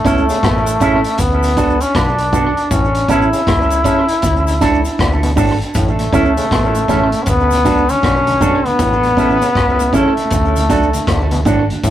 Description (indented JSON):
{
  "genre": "roots reggae",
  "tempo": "79 BPM",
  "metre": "4/4",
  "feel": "swing 63% on 16ths",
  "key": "unclear",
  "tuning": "A4 = 440 Hz",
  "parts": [
    { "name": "brilliant trombone", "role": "melody", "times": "0.0-11.9 s", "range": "A3 to E4", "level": "-16 LUFS", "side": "left 1 dB", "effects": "none" },
    { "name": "electric guitar with an envelope filter", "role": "accompaniment", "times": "0.0-11.7 s", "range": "C#4 to A4", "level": "-18 LUFS", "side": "right 3 dB", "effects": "spring reverb, tape echo" },
    { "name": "vintage muted fingered electric bass", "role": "bass", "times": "0.0-11.9 s", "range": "G#1 to D2", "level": "-19 LUFS", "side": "equal", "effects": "none" },
    { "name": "vintage drum kit", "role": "drums", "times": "0.0-11.9 s", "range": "hi-hat, kick drum, rim click", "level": "-19 LUFS", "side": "equal", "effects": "none" },
    { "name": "mellow clav", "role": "arpeggios", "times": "0.1-11.9 s", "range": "A2 to D3", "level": "-22 LUFS", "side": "left 2 dB", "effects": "none" },
    { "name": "cabasa", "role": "percussion", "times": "0.1-11.9 s", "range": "none", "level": "-33 LUFS", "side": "left 2 dB", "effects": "tape echo" },
    { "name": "mellow tonewheel organ", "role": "accompaniment", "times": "6.0-11.8 s", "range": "D2 to D4", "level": "-26 LUFS", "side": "equal", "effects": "none" }
  ],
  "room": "wet booth ambience, RT60 0.2 s",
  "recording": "rough rehearsal-room recording",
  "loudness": "-12 LUFS",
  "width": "side -12 dB against mid",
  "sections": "0.0-11.9 A section",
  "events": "none",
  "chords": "0.0 A; 1.2 D; 2.7 A; 4.2 D; 5.8 A; 7.3 D; 8.8 A; 10.3 D",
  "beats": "0.43 1.19 1.95 | 2.71 3.47 4.23 4.99 | 5.75 6.51 7.27 8.03 | 8.79 9.55 10.31 11.07 | 11.83"
}